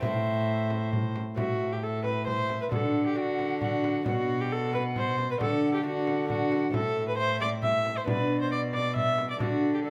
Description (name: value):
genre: classical, renaissance-style consort dance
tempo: 134 BPM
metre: 3/4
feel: straight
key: A dorian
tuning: A4 = 440 Hz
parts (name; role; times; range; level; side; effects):
- alto recorder; melody; 0.0-9.9 s; D5 to G5; -38 LUFS; equal; none
- warm viola; second line; 0.0-9.9 s; F#4 to E5; -32 LUFS; equal; none
- lute; accompaniment; 0.0-9.9 s; A2 to A4; -34 LUFS; equal; none
- rich cello; bass; 0.0-9.9 s; A2 to D3; -35 LUFS; equal; none
- frame drum; percussion; 0.0-9.6 s; none; -37 LUFS; equal; none
room: moderate recital hall reverb, RT60 1.5 s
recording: close, detailed microphones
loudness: -28 LUFS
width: mono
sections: 0.0-1.4 A section; 1.4-9.9 B section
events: none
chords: 0.0 Am; 2.7 D; 4.1 Bm; 5.4 D; 6.7 Am; 8.1 Bm